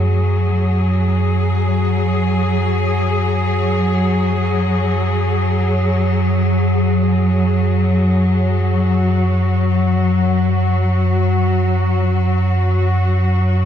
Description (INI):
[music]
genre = dark ambient drone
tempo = free time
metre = none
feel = none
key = F# minor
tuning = A4 = 440 Hz
[part]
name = rich studio cello section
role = sustained chords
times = 0.0-13.7 s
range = F#3 to G#4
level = -18 LUFS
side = left 2 dB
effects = none
[part]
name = gamelan-type bossed gongs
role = arpeggios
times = 0.0-8.3 s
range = none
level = barely audible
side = none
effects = none
[part]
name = deep rumbling drone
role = drone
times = 0.0-13.7 s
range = F#2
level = -16 LUFS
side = right 1 dB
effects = built-in reverb, wide subtle chorus
[sound]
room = wet huge ambient reverb, RT60 7.0 s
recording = none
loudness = -14 LUFS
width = side -9 dB against mid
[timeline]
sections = 0.0-13.7 A section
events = none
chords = none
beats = free time